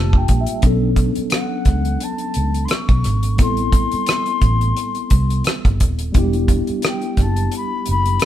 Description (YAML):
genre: R&B, neo-soul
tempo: 87 BPM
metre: 4/4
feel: swing 55% on 16ths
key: B phrygian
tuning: A4 = 440 Hz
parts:
  - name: mellow silver concert flute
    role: melody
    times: 0.0-8.3 s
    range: F#5 to C#6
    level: -24 LUFS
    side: left 6 dB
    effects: none
  - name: mellow tine electric piano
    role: accompaniment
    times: 0.0-8.3 s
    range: F#3 to A5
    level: -23 LUFS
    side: equal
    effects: medium stereo tremolo
  - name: vintage muted fingered electric bass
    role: bass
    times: 0.0-8.2 s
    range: D#1 to C#2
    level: -19 LUFS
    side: equal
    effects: none
  - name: damped 70s drum kit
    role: drums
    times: 0.1-8.3 s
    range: hi-hat, kick drum, rim click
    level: -18 LUFS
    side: equal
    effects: none
room: light reverb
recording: band playing live in one room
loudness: -16 LUFS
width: side -12 dB against mid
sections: 0.0-8.3 A section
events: tine electric piano fill 0.0-0.6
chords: 0.0 Gm9; 0.6 Bm9; 3.4 Am9; 6.1 Em9